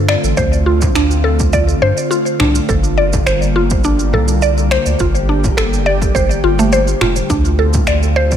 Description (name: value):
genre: organic downtempo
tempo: 104 BPM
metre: 4/4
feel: swing 53% on 16ths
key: unclear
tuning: A4 = 440 Hz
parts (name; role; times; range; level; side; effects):
- airy breathy pad; sustained chords; 0.0-8.4 s; D3 to G4; -20 LUFS; equal; chorus, phaser, sidechain pumping
- mallet-like synth pluck; arpeggios; 0.0-8.4 s; A3 to D5; -16 LUFS; equal; chorus, cassette tape, digital delay
- round analog bass; bass; 0.0-8.4 s; F1 to G2; -16 LUFS; equal; none
- electronic finger snaps and shaker; drums; 0.1-8.4 s; none; -23 LUFS; right 2 dB; overdrive, small room reverb
- electronic kick drum; drums; 0.4-8.4 s; none; -18 LUFS; equal; overdrive, small room reverb
- frame drum; percussion; 0.8-7.9 s; none; -23 LUFS; left 1 dB; none
room: light reverb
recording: none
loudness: -12 LUFS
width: side -9 dB against mid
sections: 0.0-8.4 A section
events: none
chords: 0.0 Dm7; 2.7 Gm7; 7.3 Dm7